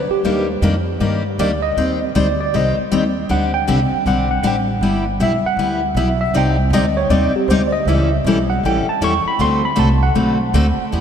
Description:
acoustic string swing (jazz manouche); 157 BPM; 4/4; swing 63% on 8ths; A4 = 440 Hz
tine electric piano; melody; 0.0-10.8 s; G4 to C#6; -20 LUFS; right 1 dB; medium stereo tremolo
upright bass; bass; 0.0-11.0 s; G1 to G2; -20 LUFS; right 1 dB
picked steel-string acoustic guitar; accompaniment; 0.2-11.0 s; C3 to D5; -18 LUFS; left 2 dB
wet cathedral reverb, RT60 5.8 s; in a vast, echoing space; -14 LUFS; side -8 dB against mid
0.0-10.9 A section
tine electric piano solo 0.0-10.9
0.2 Ebmaj7; 1.8 Cm; 3.3 D7sus4; 4.8 G6; 6.3 Cmadd9; 7.9 A7; 9.4 D6

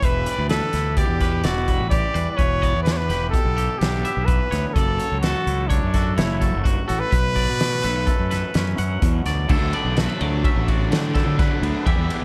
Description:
math rock and midwest emo; 127 BPM; 5/4; straight; A4 = 440 Hz
bright trumpet; melody; 0.0-9.0 s; D4 to D5; -27 LUFS; equal
twangy electric guitar; accompaniment; 0.0-12.2 s; F#2 to A4; -34 LUFS; equal
twangy electric guitar; arpeggios; 0.0-12.2 s; F#4 to F#5; -32 LUFS; equal
fuzz fingered electric bass; bass; 0.0-12.2 s; E1 to D3; -26 LUFS; equal; overdrive
loose indie drum kit; drums; 0.0-12.2 s; crash cymbal, hi-hat, kick drum, ride cymbal, snare drum; -25 LUFS; equal
raw garage guitar; riff; 9.5-12.2 s; D3 to E4; -30 LUFS; equal; overdrive
little or no reverb; dark, warm production; -21 LUFS; mono
0.0-9.5 A section; 9.5-12.2 B section
0.0 Em7; 4.8 Dmaj9/F#; 7.1 Bm9; 9.5 D69

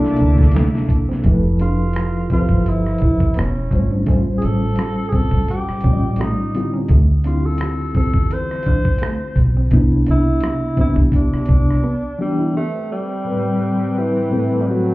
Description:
R&B, neo-soul; 85 BPM; 4/4; swing 54% on 16ths; A minor; A4 = 436 Hz
breathy tenor saxophone; melody; 0.0-14.9 s; E3 to C5; -24 LUFS; right 1 dB; tape echo
reed electric piano; accompaniment; 0.0-14.9 s; A2 to E5; -20 LUFS; left 1 dB; fast tremolo
warm analog pad; sustained chords; 0.0-1.2, 12.5-14.9 s; Bb3 to D6; -28 LUFS; equal; chorus, tremolo
dusty soul sampler-style drum kit; drums; 0.0-11.8 s; hi-hat, kick drum, rim click, snare drum; -18 LUFS; equal
deep dub fingered electric bass; bass; 0.1-11.8 s; E1 to F2; -18 LUFS; equal
hollow-body jazz guitar; second line; 0.2-12.5 s; A3 to E4; -26 LUFS; right 3 dB
digital ambience; heard muffled through a wall, club reverb, EQ; -15 LUFS; side -19 dB against mid
0.0-1.2 A section; 1.2-12.5 B section; 12.5-14.9 A section
break 11.8-12.5
0.0 C13; 1.2 Fmaj9#11; 3.4 E6; 4.1 A7alt; 6.9 Dm11; 9.7 Cmaj9; 11.8 Em7; 12.5 Am9

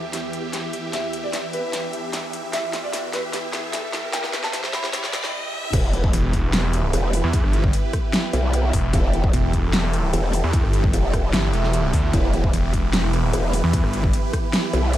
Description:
heavy wobble dubstep; 150 BPM; 4/4; half-time; E minor; A4 = 442 Hz
felt-muted upright piano; melody; 0.0-5.3 s; G4 to B5; -30 LUFS; equal; tape echo
supersaw chords; sustained chords; 0.0-15.0 s; E2 to E5; -30 LUFS; right 1 dB; phaser, sidechain pumping
riser; sound effects; 0.8-5.7 s; -33 LUFS; left 1 dB
warbly tape-like pad; texture; 0.0-15.0 s; B3 to B5; -32 LUFS; right 3 dB; chorus, built-in reverb, sidechain pumping
dubstep drum kit; drums; 0.1-15.0 s; crash cymbal, hi-hat, rim click, snare drum, toms; -26 LUFS; equal; high-pass filter on hats, small room ambience, high-pass filter on snare, high-pass filter on toms, high-pass filter on cymbals
growl bass; bass; 5.7-15.0 s; E1 to B1; -20 LUFS; equal; chorus, overdrive
electronic kick drum; drums; 5.7-14.4 s; -21 LUFS; equal; small room ambience
snarling distorted saw bass; bass; 6.1-14.1 s; E1 to E2; -21 LUFS; equal; distortion, overdrive
light reverb, digital ambience; high-pass filter; -19 LUFS; side -13 dB against mid
0.0-5.7 A section; 5.7-15.0 B section
build-up 0.0-5.7; drum fill 0.0-5.3, 5.5; filter sweep 0.0-5.7; riser 0.8-5.7; break 5.3-5.7; drop 5.7-15.0
0.0 Em

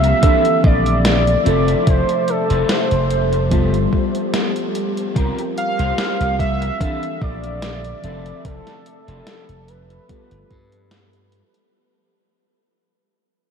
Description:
vaporwave; 73 BPM; 4/4; swing 54% on 16ths; F major; A4 = 442 Hz
warm velvety synth lead; melody; 0.0-11.3 s; A4 to F5; -21 LUFS; right 1 dB; chorus, tape echo
mellow FM electric piano; accompaniment; 0.0-11.8 s; E3 to E5; -23 LUFS; left 2 dB; phaser, wide subtle chorus, ping-pong delay
warbly tape-like pad; sustained chords; 0.0-11.7 s; C3 to E5; -28 LUFS; equal; chorus, built-in reverb
electric guitar at the edge of break-up; riff; 0.0-11.4 s; B3 to C5; -31 LUFS; left 1 dB; ensemble chorus, ping-pong delay
slap bass; bass; 0.0-11.4 s; F1 to G2; -20 LUFS; equal; tube saturation
gated 80s digital drum machine; drums; 0.0-11.7 s; hi-hat, snare drum; -26 LUFS; equal; gated reverb, gated reverb snare
electronic kick drum; drums; 0.2-10.7 s; -18 LUFS; equal; overdrive
moderate huge ambient reverb, RT60 8.1 s; dreamy mix soaked in reverb; -15 LUFS; side -7 dB against mid
0.0-11.7 A section
fade-out 0.0-11.7
0.2 Bbmaj9#11; 1.5 Fmaj7; 3.5 G9; 5.2 C7sus4; 6.8 Bbmaj9#11; 8.0 Fmaj7; 10.1 G9

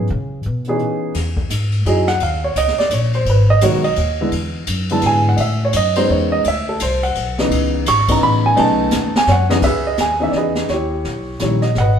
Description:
jazz piano trio; 170 BPM; 3/4; swing 63% on 8ths; E major; A4 = 440 Hz
dark grand piano; melody; 0.0-12.0 s; C#3 to C#6; -16 LUFS; right 1 dB
upright bass; bass; 0.0-12.0 s; G#1 to C#3; -19 LUFS; left 1 dB
jazz brush drum kit; drums; 0.1-12.0 s; brushed snare drum, crash cymbal, hi-hat, kick drum, ride cymbal, snare drum; -24 LUFS; left 2 dB
wet stone room reverb, RT60 1.3 s; band playing live in one room; -14 LUFS; side -8 dB against mid
0.0-1.1 A section; 1.1-9.6 A section; 9.6-12.0 B section
upright bass solo 0.0-1.1; grand piano solo 1.1-9.6; drum fill 8.9-9.6
0.0 C#m9; 1.1 Emaj9; 2.2 D#5; 3.3 G#m; 4.3 E7; 5.4 Amaj9#11; 6.5 D13; 7.5 C#m9; 8.6 B9; 9.6 C#m9; 10.7 D#7b9

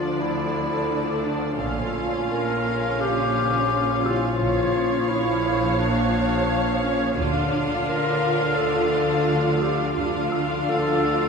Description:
cinematic; 86 BPM; 4/4; straight; D harmonic minor; A4 = 441 Hz
rich studio violin section; melody; 0.0-11.3 s; D5 to F5; -30 LUFS; left 5 dB
clear clarinet; second line; 0.0-11.3 s; Db4 to Bb4; -25 LUFS; left 2 dB
rich symphonic viola section; accompaniment; 0.0-11.3 s; F3 to Db5; -27 LUFS; right 3 dB
granular cloud pad; sustained chords; 0.0-11.3 s; Db4 to A5; -30 LUFS; equal; built-in reverb
rich studio cello section; bass; 0.0-11.3 s; Bb2 to D3; -30 LUFS; right 2 dB
bowed-like drone; drone; 0.0-11.3 s; Bb1 to D2; -29 LUFS; left 1 dB; built-in reverb
dark baby grand piano; texture; 0.0-11.3 s; E4 to E6; -38 LUFS; equal
rich symphonic double bass section; bass; 1.6-10.6 s; Bb1 to D2; -33 LUFS; right 1 dB
wet scoring stage reverb, RT60 1.4 s; minimal, uncompressed stereo recording; -20 LUFS; side -5 dB against mid
0.0-11.3 A section
0.0 Dm; 1.6 Bbm; 7.2 Dm

